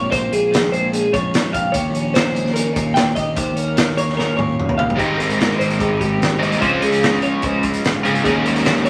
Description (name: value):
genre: math rock and midwest emo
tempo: 148 BPM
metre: 4/4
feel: straight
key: unclear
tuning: A4 = 440 Hz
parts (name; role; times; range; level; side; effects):
- twelve-string electric guitar; accompaniment; 0.0-8.9 s; Eb2 to Ab4; -25 LUFS; equal; none
- twelve-string electric guitar; arpeggios; 0.0-8.9 s; G4 to G5; -23 LUFS; equal; vibrato effect
- fuzz fingered electric bass; bass; 0.0-8.9 s; Ab1 to Eb3; -31 LUFS; equal; overdrive
- loose indie drum kit; drums; 0.1-8.9 s; hi-hat, kick drum, snare drum, toms; -24 LUFS; equal; none
- overdriven semi-hollow guitar; riff; 5.0-8.9 s; Ab2 to G4; -20 LUFS; equal; none
room: moderate studio reverb, RT60 0.9 s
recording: vinyl crackle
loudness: -18 LUFS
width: mono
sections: 0.0-5.0 A section; 5.0-8.9 B section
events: drum fill 4.2-5.0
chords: 0.0 Bbm9; 5.0 Abmaj7; 6.6 Dbmaj7; 8.2 Eb7sus4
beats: | 0.11 0.52 0.92 1.33 | 1.74 2.14 2.55 2.95 | 3.36 3.76 4.17 4.58 | 4.98 5.39 5.79 6.20 | 6.61 7.01 7.42 7.83 | 8.23 8.64